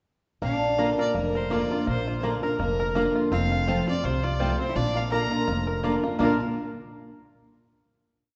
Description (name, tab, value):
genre	bluegrass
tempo	166 BPM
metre	4/4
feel	swing 56% on 8ths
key	Bb major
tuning	A4 = 440 Hz
part	clear fiddle	melody	0.4-5.8 s	Bb4 to Bb5	-33 LUFS	equal	none
part	lap resonator guitar	second line	0.4-6.4 s	D4 to F4	-34 LUFS	equal	none
part	picked steel-string acoustic guitar	accompaniment	0.4-6.4 s	F2 to F4	-30 LUFS	equal	none
part	bluegrass banjo	arpeggios	0.4-6.4 s	Bb3 to Bb4	-34 LUFS	equal	none
part	upright bass	bass	0.4-6.4 s	F1 to C2	-32 LUFS	equal	none
part	mandolin	stabs	0.8-6.4 s	Bb3 to Bb5	-39 LUFS	equal	none
room	wet recital hall reverb, RT60 1.8 s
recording	recorded in a church or concert hall, nothing above 7.8 kHz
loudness	-25 LUFS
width	mono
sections	0.4-6.2 A section; 6.2-7.6 final chord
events	none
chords	0.4 Bb; 3.3 F; 4.8 Bb